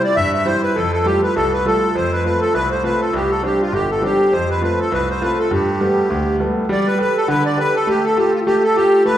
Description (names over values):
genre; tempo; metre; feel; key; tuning
celtic folk, Celtic reel; 202 BPM; 4/4; swing 56% on 8ths; unclear; A4 = 441 Hz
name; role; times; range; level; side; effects
accordion; melody; 0.0-9.2 s; F4 to E5; -17 LUFS; equal; light tremolo tuning
bright concert grand piano; accompaniment; 0.0-9.2 s; G1 to B4; -19 LUFS; equal; none
room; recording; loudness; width
wet recital hall reverb, RT60 1.8 s; heard from further back in the room; -15 LUFS; side -11 dB against mid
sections
0.0-6.7 A section; 6.7-9.2 A section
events
none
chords
0.0 C; 0.8 Fadd9; 1.9 F; 3.1 Csus2; 4.3 F; 5.5 Gadd9; 7.9 Fadd9/A